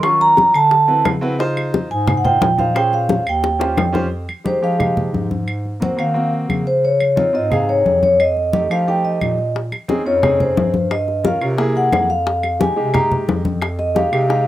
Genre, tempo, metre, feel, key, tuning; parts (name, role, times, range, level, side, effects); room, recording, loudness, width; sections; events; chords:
Afro-Cuban jazz; 177 BPM; 4/4; straight; F minor from 4.1 s; A4 = 440 Hz
vibraphone with soft mallets; melody; 0.0-14.5 s; C5 to Db6; -16 LUFS; equal
clear baby grand piano; accompaniment; 0.0-14.5 s; C3 to C5; -23 LUFS; right 1 dB
mellow bass clarinet; bass; 0.0-14.5 s; Eb2 to F3; -22 LUFS; right 1 dB
bongos; percussion; 0.0-4.0, 9.6-14.5 s; -23 LUFS; left 5 dB
claves; percussion; 0.0-14.3 s; -28 LUFS; right 2 dB
congas; percussion; 0.0-14.5 s; -22 LUFS; left 2 dB
moderate small room reverb, RT60 0.5 s; rough home demo mix; -14 LUFS; side -14 dB against mid
0.0-4.1 A section; 4.1-14.5 B section
drum fill 3.4-4.1; vibraphone solo 4.1-14.5
0.0 Ebm7; 0.7 D13; 1.4 Dbmaj9; 2.8 Bbm7; 3.4 Eb13; 4.1 Fm9; 5.5 Ab7; 6.8 Dbmaj9; 8.2 F7; 9.6 Bbm11; 10.9 Gm7b5; 11.6 Caug7; 12.3 Fm9